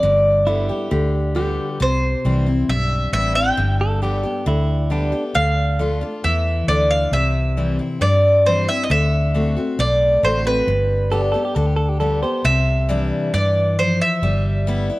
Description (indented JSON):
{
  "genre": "country",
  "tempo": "135 BPM",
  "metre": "4/4",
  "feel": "straight",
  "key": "C major",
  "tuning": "A4 = 438 Hz",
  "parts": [
    { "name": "mandolin", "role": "melody", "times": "0.0-14.9 s", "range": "B4 to G5", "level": "-19 LUFS", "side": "equal", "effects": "none" },
    { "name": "picked steel-string acoustic guitar", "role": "accompaniment", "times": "0.0-15.0 s", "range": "G2 to G4", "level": "-23 LUFS", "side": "left 2 dB", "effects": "none" },
    { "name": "vintage muted fingered electric bass", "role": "bass", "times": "0.0-14.9 s", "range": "G1 to G2", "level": "-20 LUFS", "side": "equal", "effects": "none" },
    { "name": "direct-recorded clean electric guitar", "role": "second line", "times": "0.5-5.2, 11.1-12.4 s", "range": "D4 to C5", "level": "-26 LUFS", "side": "right 2 dB", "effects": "tape echo" }
  ],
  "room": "moderate plate reverb, RT60 3.0 s",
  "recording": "worn, warbling old tape, cassette tape, warbly pitch drift",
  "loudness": "-16 LUFS",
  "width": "side -19 dB against mid",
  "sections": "0.0-12.4 A section; 12.4-15.0 A section",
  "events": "none",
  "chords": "0.0 G; 1.8 C; 3.6 G; 5.3 Dm; 7.1 C; 8.9 D7; 10.7 G; 12.4 Cadd9; 14.2 G6",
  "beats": "| 0.03 0.47 0.91 1.36 | 1.80 2.25 2.69 3.13 | 3.58 4.02 4.46 4.91 | 5.35 5.79 6.24 6.68 | 7.12 7.57 8.01 8.45 | 8.90 9.34 9.78 10.23 | 10.67 11.12 11.56 12.00 | 12.45 12.89 13.34 13.78 | 14.22 14.67"
}